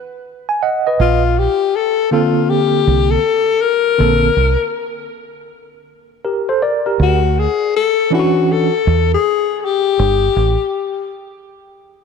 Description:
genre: hip hop, jazz-hop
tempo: 80 BPM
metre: 4/4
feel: swing 65% on 16ths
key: unclear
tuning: A4 = 442 Hz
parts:
  - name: tine electric piano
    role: accompaniment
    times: 0.5-8.7 s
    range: D3 to G#5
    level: -18 LUFS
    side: right 3 dB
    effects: fast stereo tremolo
  - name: breathy alto saxophone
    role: melody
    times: 1.0-11.1 s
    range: E#4 to A#4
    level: -16 LUFS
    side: left 9 dB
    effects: none
  - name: deep dub fingered electric bass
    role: bass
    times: 1.0-10.5 s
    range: G1 to E2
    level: -15 LUFS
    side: right 3 dB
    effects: none
room: light reverb, studio reverb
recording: none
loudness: -13 LUFS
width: side -6 dB against mid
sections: 1.0-12.0 A section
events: break 0.0-1.0, 10.0-12.0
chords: 0.0 B; 1.0 A#maj9; 7.0 Dmaj9; 10.0 Gsus2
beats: 0.24 | 0.99 1.74 2.49 3.24 | 3.99 4.74 5.49 6.24 | 6.99 7.74 8.49 9.24 | 9.99 10.74

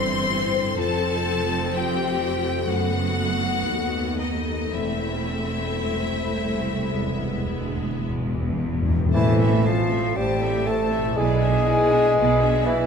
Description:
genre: classical, slow romantic movement for symphony orchestra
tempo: 52-66 BPM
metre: 4/4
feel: rubato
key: A minor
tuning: A4 = 440 Hz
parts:
  - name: rich symphonic violin section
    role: melody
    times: 0.0-12.9 s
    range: D5 to C6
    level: -30 LUFS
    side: left 5 dB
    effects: none
  - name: dark symphonic violin section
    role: second line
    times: 0.0-12.9 s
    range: D#4 to C5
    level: -32 LUFS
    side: left 4 dB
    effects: none
  - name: rich symphonic viola section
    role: accompaniment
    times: 0.0-12.9 s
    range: E3 to E4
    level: -30 LUFS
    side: right 1 dB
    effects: none
  - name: concert harp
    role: arpeggios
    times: 0.0-12.9 s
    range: E2 to F5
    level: -31 LUFS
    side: left 9 dB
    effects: none
  - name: clear symphonic double bass section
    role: bass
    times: 0.0-12.9 s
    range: E1 to D#2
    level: -29 LUFS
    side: right 5 dB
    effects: none
  - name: rich symphonic cello section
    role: bass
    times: 0.0-12.9 s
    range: C2 to B2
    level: -28 LUFS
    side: right 3 dB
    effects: none
  - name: timpani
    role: percussion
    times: 0.0-0.3, 6.9-10.6 s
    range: E2 to A2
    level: -26 LUFS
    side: left 2 dB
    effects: none
  - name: hollow concert flute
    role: second line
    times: 9.1-12.9 s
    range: E5 to A5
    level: -29 LUFS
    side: left 4 dB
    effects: none
  - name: warm bassoon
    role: accompaniment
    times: 9.1-12.9 s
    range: E3 to A3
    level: -24 LUFS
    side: equal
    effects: none
  - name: warm clarinet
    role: second line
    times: 9.2-12.9 s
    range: E4 to A4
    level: -29 LUFS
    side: left 1 dB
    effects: none
  - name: mellow French horn section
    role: sustained chords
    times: 9.2-12.9 s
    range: E4 to A4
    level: -27 LUFS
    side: left 2 dB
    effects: none
room: wet concert hall reverb, RT60 1.9 s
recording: none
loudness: -20 LUFS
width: side -6 dB against mid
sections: 0.0-9.1 A section; 9.1-12.9 B section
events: timpani fill 7.0-9.1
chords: 0.0 Am; 0.8 F; 2.7 B7/F#; 4.7 Am/E; 7.0 E; 9.1 Am; 11.2 E7/B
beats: | 0.78 1.74 2.68 3.66 | 4.74 5.84 6.95 8.06 | 9.14 10.16 11.17 12.17

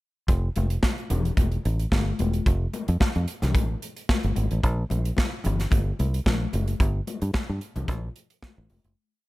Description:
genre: disco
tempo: 111 BPM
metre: 4/4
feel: straight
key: F major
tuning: A4 = 440 Hz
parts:
  - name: fingered electric bass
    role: bass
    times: 0.3-8.9 s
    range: E1 to G2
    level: -25 LUFS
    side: equal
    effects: none
  - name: modern studio drum kit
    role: drums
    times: 0.3-9.0 s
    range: hi-hat, kick drum, snare drum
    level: -25 LUFS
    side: equal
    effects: none
  - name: congas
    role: percussion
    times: 0.6-8.8 s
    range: none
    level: -32 LUFS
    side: left 5 dB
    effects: none
room: small room ambience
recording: none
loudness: -23 LUFS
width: side -19 dB against mid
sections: 0.3-9.0 breakdown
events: fade-out 6.8-9.0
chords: none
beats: | 0.28 0.83 1.37 1.92 | 2.46 3.01 3.55 4.09 | 4.63 5.18 5.72 6.26 | 6.80 7.35 7.89 8.43

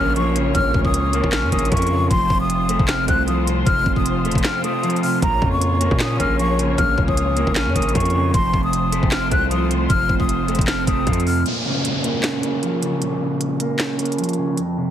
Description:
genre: hip hop, trap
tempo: 154 BPM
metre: 4/4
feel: half-time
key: Bb harmonic minor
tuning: A4 = 439 Hz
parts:
  - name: breathy concert flute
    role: melody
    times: 0.0-11.4 s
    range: Bb5 to Gb6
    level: -22 LUFS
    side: left 2 dB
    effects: digital delay
  - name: electric guitar at the edge of break-up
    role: accompaniment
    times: 0.0-14.9 s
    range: F2 to Db4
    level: -21 LUFS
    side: right 1 dB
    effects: spring reverb, low-pass filter
  - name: muted studio string section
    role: sustained chords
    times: 0.0-11.4 s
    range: A3 to Db5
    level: -28 LUFS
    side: left 3 dB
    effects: none
  - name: distorted 808-style bass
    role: bass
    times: 0.0-11.4 s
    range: Eb1 to Bb2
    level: -23 LUFS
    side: equal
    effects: distortion
  - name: downlifter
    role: sound effects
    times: 0.0-2.1, 11.5-14.6 s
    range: none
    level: -29 LUFS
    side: equal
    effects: none
  - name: trap drum kit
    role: drums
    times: 0.2-14.7 s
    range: handclaps, hi-hat, kick drum, snare drum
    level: -22 LUFS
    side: equal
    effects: none
room: light reverb, digital ambience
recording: heavily compressed radio sound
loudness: -17 LUFS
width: side -10 dB against mid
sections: 0.0-11.5 A section; 11.5-14.9 B section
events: kick muted 4.4-5.2; break 11.5-14.9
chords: 0.0 Bbm; 2.1 F; 5.2 Bbm; 8.3 F; 11.5 Bbm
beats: 0.16 | 0.55 0.94 1.33 1.72 | 2.11 2.50 2.89 3.27 | 3.67 4.05 4.44 4.83 | 5.22 5.61 6.00 6.39 | 6.78 7.17 7.56 7.95 | 8.34 8.73 9.12 9.51 | 9.90 10.29 10.68 11.07 | 11.46 11.85 12.24 12.63 | 13.02 13.40 13.79 14.19 | 14.57

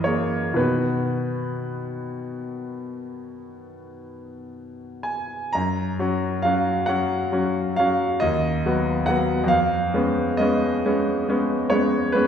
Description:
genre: classical, romantic nocturne for solo piano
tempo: 35-47 BPM (dotted quarters)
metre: 9/8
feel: rubato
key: B major, F# major from 5.6 s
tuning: A4 = 443 Hz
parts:
  - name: bright grand piano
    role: solo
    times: 0.0-12.3 s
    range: D#2 to A#5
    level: -21 LUFS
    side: equal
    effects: none
room: wet recital hall reverb, RT60 1.6 s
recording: recorded in a church or concert hall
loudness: -20 LUFS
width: side -8 dB against mid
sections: 0.0-5.6 A section; 5.6-12.3 B section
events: none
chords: 0.0 F#13; 0.6 B; 5.6 F#; 8.2 B/D#; 9.5 C#7/E#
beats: | 0.57 2.24 3.93 | 5.55 6.89 8.22 | 9.51 10.84 12.15

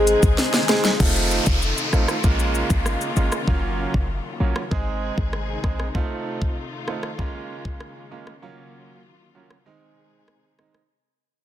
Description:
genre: dancehall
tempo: 97 BPM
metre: 4/4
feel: straight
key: unclear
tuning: A4 = 440 Hz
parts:
  - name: warm velvety synth lead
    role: melody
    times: 0.0-0.8 s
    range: Ab4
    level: -22 LUFS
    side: left 2 dB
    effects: chorus, tape echo
  - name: bright concert grand piano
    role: accompaniment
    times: 0.0-10.8 s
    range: Eb3 to Ab4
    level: -28 LUFS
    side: right 6 dB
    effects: sidechain pumping
  - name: warm studio string section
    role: sustained chords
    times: 0.0-10.9 s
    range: C3 to Ab4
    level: -31 LUFS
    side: left 4 dB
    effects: sidechain pumping
  - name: short 808-style bass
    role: bass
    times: 0.0-5.9 s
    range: F1 to Bb1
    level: -23 LUFS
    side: equal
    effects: none
  - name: island pop drum kit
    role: drums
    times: 0.1-10.9 s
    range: crash cymbal, hi-hat, kick drum, rim click, shaker, snare drum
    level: -23 LUFS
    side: left 1 dB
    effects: soft clipping on snare
  - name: downlifter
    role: sound effects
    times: 1.0-5.9 s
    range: none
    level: -28 LUFS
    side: left 1 dB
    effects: none
room: digital ambience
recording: dense, heavily limited modern master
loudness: -20 LUFS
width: side -11 dB against mid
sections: 0.0-1.0 A section; 1.0-10.9 B section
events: drum fill 0.4-1.0; fade-out 1.0-10.9; break 9.7-10.9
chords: 0.0 Ab; 1.0 F7; 2.2 Bbm7; 3.5 Gbmaj7; 4.7 Ab; 5.9 F7; 7.2 Bbm7; 8.4 Gbmaj7; 9.7 Ab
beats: 0.38 | 1.00 1.62 2.24 2.86 | 3.48 4.09 4.71 5.33 | 5.95 6.57 7.19 7.80 | 8.42 9.04 9.66 10.28

